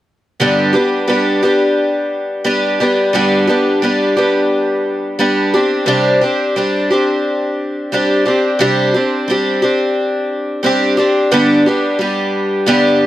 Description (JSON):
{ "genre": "rock", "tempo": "88 BPM", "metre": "4/4", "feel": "straight", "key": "G major", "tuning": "A4 = 440 Hz", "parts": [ { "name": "picked twelve-string acoustic guitar", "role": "solo", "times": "0.4-13.1 s", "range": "G2 to G4", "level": "-12 LUFS", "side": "equal", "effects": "none" } ], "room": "little or no reverb", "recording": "dry, close 1970s-style studio recording", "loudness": "-12 LUFS", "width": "side -13 dB against mid", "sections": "0.4-11.3 A section; 11.3-13.1 B section", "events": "none", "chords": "0.4 G; 5.5 Csus2; 11.3 G" }